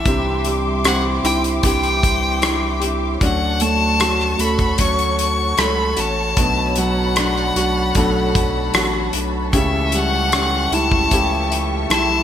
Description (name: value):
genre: pop ballad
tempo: 76 BPM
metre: 4/4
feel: straight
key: D major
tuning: A4 = 441 Hz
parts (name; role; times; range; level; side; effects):
- clear violin; melody; 0.0-12.2 s; E5 to C#6; -21 LUFS; left 2 dB; none
- warm concert grand piano; accompaniment; 0.0-12.2 s; B2 to C#5; -23 LUFS; right 3 dB; none
- dark studio string section; sustained chords; 0.0-12.2 s; F#4 to D6; -26 LUFS; left 2 dB; none
- nylon-string guitar; arpeggios; 0.0-12.2 s; B2 to G4; -26 LUFS; left 3 dB; none
- saturated sub bass; bass; 0.0-12.2 s; A1 to D2; -24 LUFS; equal; none
- loose indie drum kit; drums; 0.1-12.1 s; hi-hat, kick drum, rim click; -20 LUFS; equal; gated reverb
room: moderate lush hall reverb, RT60 2.1 s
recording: bright 1980s-style digital production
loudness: -15 LUFS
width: side -10 dB against mid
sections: 0.0-12.2 A section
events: none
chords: 0.1 Cadd9; 3.2 Dmaj7; 6.4 Bm7; 9.5 A7/C#